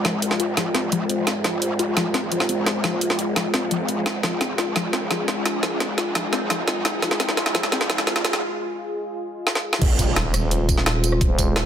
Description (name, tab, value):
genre	dark technical drum and bass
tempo	172 BPM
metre	4/4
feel	straight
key	F minor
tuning	A4 = 440 Hz
part	dark analog pad	sustained chords	0.0-11.7 s	Ab3 to C5	-26 LUFS	left 1 dB	chorus, sidechain pumping
part	wide unison pluck	arpeggios	0.0-8.1 s	F3 to F4	-29 LUFS	left 3 dB	phaser, sidechain pumping, dub echo
part	growl bass	bass	0.0-10.2 s	F1 to C2	-29 LUFS	equal	chorus, overdrive, high-pass filter
part	drum and bass drum kit	drums	0.0-11.6 s	crash cymbal, hi-hat, rim click, snare drum, tambourine	-23 LUFS	equal	overdrive, small room ambience
part	riser and impact	sound effects	0.7-11.2 s	none	-32 LUFS	right 1 dB	none
part	electronic kick drum	drums	9.8-11.5 s	none	-20 LUFS	equal	overdrive, small room ambience
part	growling FM bass	bass	10.2-11.7 s	Eb1	-22 LUFS	equal	none
room	moderate plate reverb, RT60 1.8 s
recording	dense, heavily limited modern master, high-pass filter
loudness	-20 LUFS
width	side -9 dB against mid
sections	0.0-9.8 A section; 9.8-11.7 B section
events	build-up 0.0-9.8; drum fill 0.0-8.4, 9.5-9.8; filter sweep on synth arpeggio sound 0.0-9.8; riser 0.7-8.4; break 8.4-9.8; drop 9.8-11.7; impact 9.8-11.2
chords	0.0 Fm